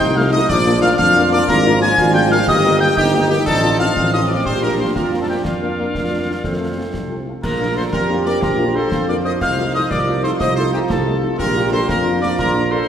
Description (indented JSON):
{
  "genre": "military-style march for wind band",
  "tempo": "121 BPM (dotted quarters)",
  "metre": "6/8",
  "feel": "straight",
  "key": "Bb major",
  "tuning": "A4 = 445 Hz",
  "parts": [
    { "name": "clear trumpet section", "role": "melody", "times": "0.0-12.9 s", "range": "F4 to Ab5", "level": "-22 LUFS", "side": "equal", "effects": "none" },
    { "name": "piccolo", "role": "second line", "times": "0.0-12.9 s", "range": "F5 to Ab6", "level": "-21 LUFS", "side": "left 2 dB", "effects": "none" },
    { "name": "warm euphonium", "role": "second line", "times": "0.0-12.8 s", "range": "C4 to G4", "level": "-23 LUFS", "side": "right 2 dB", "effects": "none" },
    { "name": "warm woodwind section", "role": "second line", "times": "0.0-12.9 s", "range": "Eb4 to Eb5", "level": "-26 LUFS", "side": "left 1 dB", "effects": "none" },
    { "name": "dark trombone section", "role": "sustained chords", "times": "0.0-12.9 s", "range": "Eb3 to Eb4", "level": "-26 LUFS", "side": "equal", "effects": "none" },
    { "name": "dark tuba", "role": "bass", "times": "0.0-12.8 s", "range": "G1 to F2", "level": "-20 LUFS", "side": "right 1 dB", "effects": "none" },
    { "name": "concert snare drum, concert bass drum and clash cymbals", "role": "drums", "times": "0.0-12.5 s", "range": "none", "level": "-26 LUFS", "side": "equal", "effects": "none" },
    { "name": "dark French horn section", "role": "accompaniment", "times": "0.2-12.8 s", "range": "A3 to G4", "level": "-24 LUFS", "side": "left 2 dB", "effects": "none" }
  ],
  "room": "wet concert hall reverb, RT60 2.1 s",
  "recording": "recorded in a church or concert hall",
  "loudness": "-14 LUFS",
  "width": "side -9 dB against mid",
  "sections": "0.0-7.4 A section; 7.4-12.9 B section",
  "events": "none",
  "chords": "0.5 Bb; 1.5 Bb7/Ab; 2.5 Eb/G; 3.5 F7/A; 4.5 Bb; 5.5 Bb/F; 6.4 F; 7.4 Bb; 9.4 F7/C; 11.4 Bb",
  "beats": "0.00 | 0.50 0.99 | 1.49 1.98 | 2.48 2.98 | 3.47 3.96 | 4.46 4.96 | 5.45 5.95 | 6.44 6.94 | 7.43 7.93 | 8.42 8.92 | 9.41 9.91 | 10.40 10.90 | 11.40 11.89 | 12.39"
}